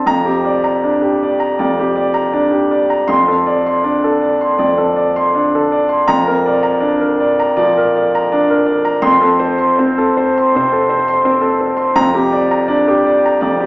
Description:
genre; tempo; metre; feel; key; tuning
neoclassical minimalist piano; 81 BPM; 4/4; rubato; unclear; A4 = 440 Hz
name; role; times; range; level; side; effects
clear grand piano; solo; 0.0-13.7 s; F2 to C6; -12 LUFS; equal; none
room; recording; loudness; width
wet recital hall reverb, RT60 1.4 s; recorded in a church or concert hall, small speaker sound; -11 LUFS; side -24 dB against mid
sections
0.0-13.7 A section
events
none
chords
0.0 Gm7/F; 3.1 Dm7/F; 6.1 Bb/F; 9.0 F; 12.0 Gm7/F

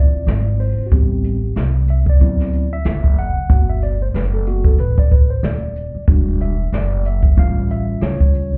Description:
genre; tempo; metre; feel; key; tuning
hip hop, jazz-hop; 93 BPM; 4/4; swing 58% on 16ths; unclear; A4 = 440 Hz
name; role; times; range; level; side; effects
mellow tine electric piano; accompaniment; 0.0-8.6 s; F#3 to F#5; -27 LUFS; equal; plate reverb
upright bass; bass; 0.0-8.6 s; Eb1 to E2; -21 LUFS; equal; none
jazz brush drum kit; drums; 0.3-8.5 s; hi-hat, kick drum, snare drum; -17 LUFS; equal; none
room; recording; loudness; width
little or no reverb; heard muffled through a wall, club reverb, EQ; -17 LUFS; mono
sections
0.0-8.6 A section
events
tine electric piano solo 0.0-8.6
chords
0.0 Dm9; 0.9 Am7; 2.2 D13; 3.5 Gmaj9; 6.1 Em9; 7.4 A7b13

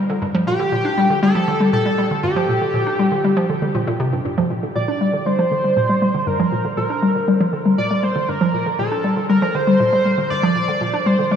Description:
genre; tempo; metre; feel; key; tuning
ambient; 119 BPM; 4/4; straight; G minor; A4 = 438 Hz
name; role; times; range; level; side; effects
hollow square pluck; riff; 0.0-11.4 s; G2 to D4; -18 LUFS; equal; chorus, tape echo
pulse-width lead; melody; 0.5-11.4 s; G4 to D5; -20 LUFS; equal; chorus, tape echo
room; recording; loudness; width
wet huge ambient reverb, RT60 7.7 s; small room reverb; -16 LUFS; side -8 dB against mid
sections
0.0-4.3 A section; 4.3-11.4 B section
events
none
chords
0.0 Gm

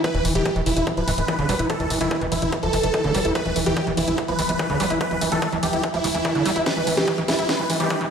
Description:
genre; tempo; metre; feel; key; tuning
psychedelic trance; 145 BPM; 4/4; straight; unclear; A4 = 440 Hz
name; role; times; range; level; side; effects
dense compressed supersaw; melody; 0.0-8.0 s; E4 to B4; -24 LUFS; right 2 dB; phaser, sidechain pumping, digital delay
pulsing gated texture; sustained chords; 0.0-8.1 s; E3; -29 LUFS; right 1 dB; chorus, built-in reverb, sidechain pumping
screaming distorted acid line; riff; 0.0-8.1 s; D3 to E4; -24 LUFS; equal; distortion, chorus, auto-pan, sidechain pumping, digital delay
electronic kick drum; drums; 0.0-8.0 s; none; -27 LUFS; equal; high-pass filter on kick, small room ambience
garage drum kit; drums; 0.0-8.1 s; hi-hat, snare drum; -28 LUFS; left 1 dB; small room ambience
swell and riser; sound effects; 0.0, 7.5-8.1 s; none; -38 LUFS; equal; none
tight sequencer bass; bass; 0.1-8.1 s; D1 to F1; -28 LUFS; left 1 dB; none
vowel-sweep wobble bass; second line; 1.5-3.3 s; G3 to B3; -37 LUFS; left 1 dB; none
room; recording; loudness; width
moderate lush hall reverb, RT60 2.0 s; played on a big sound system in a bare room, stone room reverb, high-pass filter; -19 LUFS; side -7 dB against mid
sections
0.0-8.1 A section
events
build-up 0.0-8.1; filter sweep on acid bass 0.0-8.1; filter sweep on synth texture 0.0-8.1; drum fill 6.7-8.1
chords
0.0 Dsus2 (rootless)

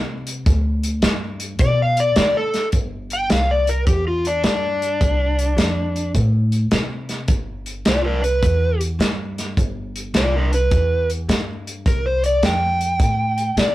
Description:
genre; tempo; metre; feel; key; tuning
electric blues shuffle; 105 BPM; 4/4; swing 66% on 8ths; G mixolydian; A4 = 439 Hz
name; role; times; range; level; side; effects
upright bass; bass; 0.0-13.7 s; G1 to D3; -22 LUFS; equal; none
warm soul drum kit; drums; 0.3-13.7 s; hi-hat, kick drum, snare drum; -20 LUFS; equal; none
overdriven slide guitar; melody; 1.6-13.7 s; D4 to G5; -20 LUFS; equal; none
room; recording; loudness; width
light reverb; rough rehearsal-room recording; -17 LUFS; side -16 dB against mid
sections
0.0-2.7 A section; 2.7-13.7 B section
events
electric slide guitar solo 0.0-2.7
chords
0.5 Dsus4; 2.7 G5; 5.0 F6/C; 7.3 G; 11.8 C5

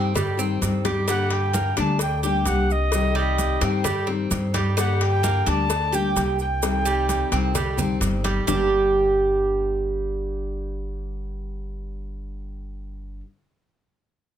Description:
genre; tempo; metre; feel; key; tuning
latin, Cuban son and guajira; 130 BPM; 4/4; straight; G minor; A4 = 439 Hz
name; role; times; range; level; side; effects
mellow soprano recorder; melody; 0.0-8.0 s; Eb5 to A5; -26 LUFS; equal; none
nylon-string guitar; accompaniment; 0.0-13.3 s; G2 to G4; -29 LUFS; left 6 dB; none
Cuban tres; arpeggios; 0.0-13.2 s; G3 to G4; -25 LUFS; right 4 dB; none
upright bass; bass; 0.0-13.2 s; G1 to G2; -26 LUFS; equal; none
congas; percussion; 0.2-8.6 s; none; -30 LUFS; equal; none
cowbell and bongos; percussion; 0.2-8.6 s; none; -31 LUFS; left 5 dB; none
maracas; percussion; 0.2-8.6 s; none; -32 LUFS; right 10 dB; none
room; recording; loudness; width
little or no reverb; close, detailed microphones; -20 LUFS; side -9 dB against mid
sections
0.0-1.1 A section; 1.1-8.5 B section; 8.5-12.2 C section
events
drum fill 0.8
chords
0.0 Cm; 1.1 Gm; 2.9 Cm; 4.8 Gm; 6.6 Cm; 8.5 Gm

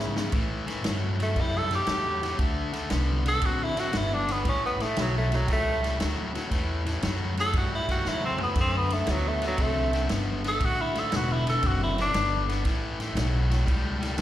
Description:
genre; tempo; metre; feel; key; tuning
electric blues shuffle; 117 BPM; 4/4; swing 68% on 8ths; unclear; A4 = 439 Hz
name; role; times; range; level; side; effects
bright tenor saxophone; melody; 0.0-12.5 s; F#3 to A4; -28 LUFS; right 1 dB; plate reverb, slapback echo, analog delay
cranked stack guitar; riff; 0.0-14.2 s; E2 to C4; -31 LUFS; left 3 dB; overdrive, slapback echo
upright bass; bass; 0.0-14.2 s; E1 to A2; -29 LUFS; equal; none
vintage drum kit; drums; 0.2-14.2 s; kick drum, ride cymbal, snare drum, toms; -31 LUFS; equal; none
room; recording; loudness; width
light reverb; live gig heard through the venue's PA, recital hall reverb; -24 LUFS; side -12 dB against mid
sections
0.3-14.2 A section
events
drum fill 0.0-0.3, 8.0-8.6; tenor saxophone solo 0.3-14.2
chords
0.3 A5; 2.4 D5; 4.5 A7; 8.6 D7; 12.7 A7

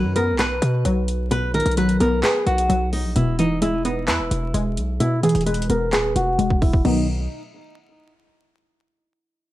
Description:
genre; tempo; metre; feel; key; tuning
hip hop, trap; 130 BPM; 4/4; half-time; unclear; A4 = 440 Hz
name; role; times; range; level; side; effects
flamenco guitar; melody; 0.0-7.1 s; D#4 to B4; -23 LUFS; equal; low-pass filter, tape echo
warbly dusty pluck; accompaniment; 0.0-7.1 s; B2 to B4; -23 LUFS; left 1 dB; chorus, low-pass filter
hard-hitting 808-style bass; bass; 0.0-7.3 s; D#1 to B2; -23 LUFS; equal; none
trap drum kit; drums; 0.2-7.0 s; crash cymbal, handclaps, hi-hat, kick drum; -25 LUFS; equal; vintage 12-bit sampler grit
room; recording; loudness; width
digital ambience; vinyl crackle; -18 LUFS; side -15 dB against mid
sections
0.0-6.8 A section; 6.8-8.7 B section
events
filter sweep 0.0-6.8; drum fill 6.4-6.8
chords
0.0 B; 3.2 E; 6.8 N.C.

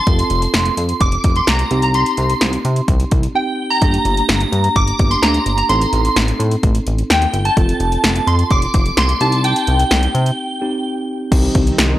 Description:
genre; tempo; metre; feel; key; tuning
synth-pop; 128 BPM; 4/4; straight; unclear; A4 = 438 Hz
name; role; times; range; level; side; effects
shimmering bell with halo; melody; 0.0-10.8 s; G5 to D6; -18 LUFS; right 1 dB; ensemble chorus, phaser
mellow tine electric piano; accompaniment; 0.0-12.0 s; Bb3 to A4; -23 LUFS; right 1 dB; medium stereo tremolo
chorused synth bass; bass; 0.1-12.0 s; F1 to C3; -17 LUFS; equal; none
deep house drum kit; drums; 0.1-11.9 s; crash cymbal, hi-hat, kick drum, snare drum; -17 LUFS; equal; overdrive
chorused pulse-width pad; sustained chords; 11.3-12.0 s; Eb3 to Eb4; -23 LUFS; left 1 dB; none
room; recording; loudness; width
digital ambience; dry, gritty hardware recording, cassette tape; -13 LUFS; side -14 dB against mid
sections
0.0-11.3 A section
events
silent gap 3.3-3.8; break 10.4-11.3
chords
0.1 F; 1.7 Cm; 3.8 Gm; 5.7 Adim; 7.6 F; 9.2 Cm

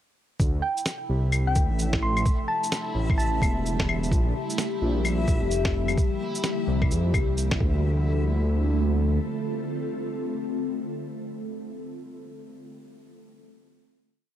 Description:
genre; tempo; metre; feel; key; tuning
future garage; 129 BPM; 4/4; swing 62% on 16ths; D minor; A4 = 439 Hz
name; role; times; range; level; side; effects
ethereal airy pad; sustained chords; 1.4-11.8 s; C3 to A4; -31 LUFS; left 1 dB; ensemble chorus, built-in reverb, phaser, sidechain pumping
dark detuned saw bass; bass; 0.4-9.2 s; E1 to F2; -24 LUFS; equal; sidechain pumping
electronic kick drum; drums; 0.4-7.7 s; none; -25 LUFS; equal; none
electronic shaker, snare drum and claves; drums; 0.4-7.6 s; none; -30 LUFS; left 1 dB; none
backwards swelling texture; texture; 0.8-7.9 s; E4 to E5; -38 LUFS; left 1 dB; built-in reverb
thumb-piano-like synth pluck; melody; 0.6-3.8 s; G5 to C6; -31 LUFS; equal; chorus, cassette tape, analog delay
room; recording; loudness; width
light reverb; cassette tape; -23 LUFS; side -11 dB against mid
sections
0.4-7.8 groove; 7.8-11.6 final hit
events
none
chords
0.4 Dm7; 2.3 A7; 4.1 Gm7/Bb; 6.0 C7sus4; 7.6 Dm7

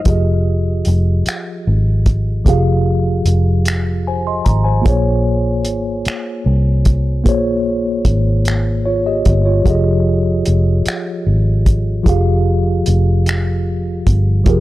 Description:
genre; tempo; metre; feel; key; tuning
slow six-eight R&B; 50 BPM (dotted quarters); 6/8; straight; F minor; A4 = 443 Hz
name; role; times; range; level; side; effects
mellow tine electric piano; accompaniment; 0.0-14.6 s; F3 to C6; -19 LUFS; equal; medium stereo tremolo
vintage muted fingered electric bass; bass; 0.0-14.6 s; F1 to C2; -15 LUFS; equal; none
cloth-damped thuddy drum kit; drums; 0.1-14.6 s; finger snaps, hi-hat, kick drum; -15 LUFS; equal; none
room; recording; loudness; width
studio ambience; dry, gritty hardware recording; -13 LUFS; side -16 dB against mid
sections
0.1-14.6 A section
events
none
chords
0.1 Fm9; 4.9 Bbm9; 9.7 Fm9

